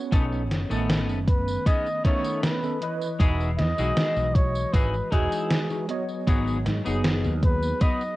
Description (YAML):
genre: vaporwave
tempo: 78 BPM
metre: 4/4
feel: straight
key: unclear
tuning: A4 = 441 Hz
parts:
  - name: tine electric piano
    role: accompaniment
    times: 0.0-8.2 s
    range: D#3 to D#5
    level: -30 LUFS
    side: right 1 dB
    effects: medium stereo tremolo, analog chorus, cassette tape, analog delay
  - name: clean electric guitar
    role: riff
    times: 0.1-8.0 s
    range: B3 to B4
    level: -32 LUFS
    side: left 3 dB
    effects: lush chorus, cassette tape, analog delay
  - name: mellow fretless electric bass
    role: bass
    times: 0.1-7.7 s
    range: E1 to G#2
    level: -27 LUFS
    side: equal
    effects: ensemble chorus
  - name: electronic kick drum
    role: drums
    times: 0.1-8.0 s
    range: none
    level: -21 LUFS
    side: equal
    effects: vintage 12-bit sampler grit, cassette tape
  - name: gated 80s digital drum machine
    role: drums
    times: 0.1-8.2 s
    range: hi-hat, snare drum, tambourine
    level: -28 LUFS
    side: equal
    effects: gated reverb, gated reverb snare, vintage 12-bit sampler grit, cassette tape
  - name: breathy flugelhorn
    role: melody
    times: 1.3-8.2 s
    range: G#4 to D#5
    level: -30 LUFS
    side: equal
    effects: cassette tape, tape echo
room: light reverb, digital ambience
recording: home recording on cassette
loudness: -22 LUFS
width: side -18 dB against mid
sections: 0.0-8.2 A section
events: clean electric guitar fill 7.8-8.2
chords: 0.1 B9; 3.2 Emaj9; 6.3 G#m7